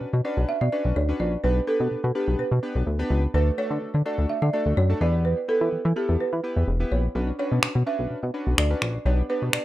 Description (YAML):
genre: dance-pop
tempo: 126 BPM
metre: 4/4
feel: straight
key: B minor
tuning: A4 = 444 Hz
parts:
  - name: folk marimba with medium hard mallets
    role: melody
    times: 0.0-9.6 s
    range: G4 to E5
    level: -28 LUFS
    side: right 2 dB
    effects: digital delay
  - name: chorused retro synth keys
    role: accompaniment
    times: 0.0-9.6 s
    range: A3 to B4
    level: -31 LUFS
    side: equal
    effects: none
  - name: chorused synth bass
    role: bass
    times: 0.0-9.6 s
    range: E1 to E3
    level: -22 LUFS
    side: equal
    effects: none
  - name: electronic finger snaps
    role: drums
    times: 7.6-9.6 s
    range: none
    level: -21 LUFS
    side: equal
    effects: none
room: light reverb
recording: rough home demo mix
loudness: -22 LUFS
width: side -15 dB against mid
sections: 0.0-9.6 A section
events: none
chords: 0.0 Bmadd9; 1.4 G/B; 3.3 D; 5.0 Em; 7.2 Bmadd9; 9.1 G/B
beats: 0.01 0.49 0.96 | 1.44 1.91 2.39 2.87 | 3.34 3.82 4.29 4.77 | 5.25 5.72 6.20 6.68 | 7.15 7.63 8.11 8.58 | 9.06 9.53